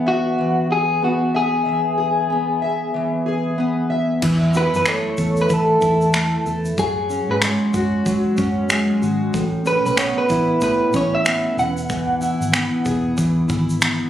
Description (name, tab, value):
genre	acoustic pop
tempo	94 BPM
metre	4/4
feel	swing 60% on 16ths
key	unclear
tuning	A4 = 440 Hz
part	fingerpicked plugged-in steel-string acoustic guitar	accompaniment	0.0-14.1 s	A2 to E5	-20 LUFS	equal	double-tracked left and right
part	electric guitar at the edge of break-up	melody	0.1-13.8 s	F#4 to F#5	-21 LUFS	equal	none
part	vintage muted fingered electric bass	bass	4.2-14.0 s	E1 to F#3	-23 LUFS	equal	none
part	natural country drum kit	drums	4.2-14.0 s	crash cymbal, finger snaps, kick drum, shaker	-23 LUFS	equal	none
room	light reverb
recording	recorded on a phone in the room, studio reverb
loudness	-17 LUFS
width	side -11 dB against mid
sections	0.0-4.2 A section; 4.2-14.1 B section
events	none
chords	0.0 Eadd9; 4.2 Esus4; 6.8 F#sus2; 9.3 Aadd9; 11.6 Eadd9